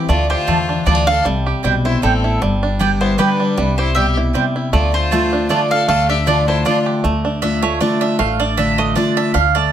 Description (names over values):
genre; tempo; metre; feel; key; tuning
bluegrass; 156 BPM; 3/4; swing 54% on 8ths; D dorian; A4 = 440 Hz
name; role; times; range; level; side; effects
picked steel-string acoustic guitar; accompaniment; 0.0-9.7 s; G2 to G4; -19 LUFS; left 2 dB; none
bluegrass banjo; arpeggios; 0.0-9.7 s; D3 to G4; -22 LUFS; right 3 dB; none
mandolin; melody; 0.1-6.8 s; A4 to F5; -20 LUFS; equal; none
clear fiddle; second line; 0.1-6.8 s; C4 to A4; -25 LUFS; left 3 dB; none
upright bass; bass; 0.1-9.7 s; G1 to E2; -20 LUFS; equal; none
mandolin; stabs; 0.5-9.7 s; A3 to A5; -20 LUFS; right 7 dB; none
room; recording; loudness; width
moderate studio reverb, RT60 0.8 s; none; -14 LUFS; side -10 dB against mid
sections
0.0-7.0 A section; 7.0-9.7 B section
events
mandolin solo 7.0-9.7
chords
0.1 Dm; 1.3 C; 2.4 G; 3.6 C; 4.7 Dm